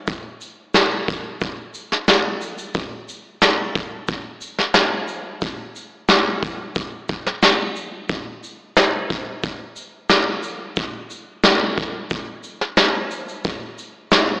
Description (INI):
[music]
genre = pop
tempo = 90 BPM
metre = 4/4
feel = straight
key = none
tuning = none
[part]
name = soft brush drum kit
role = drums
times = 0.1-14.3 s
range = kick drum, shaker, snare drum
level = -18 LUFS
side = equal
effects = soft clipping on snare
[sound]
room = wet plate reverb, RT60 2.4 s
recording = blown-out, overdriven recording, overdrive, AM radio sound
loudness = -18 LUFS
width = side -24 dB against mid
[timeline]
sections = 0.0-14.4 A section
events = none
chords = none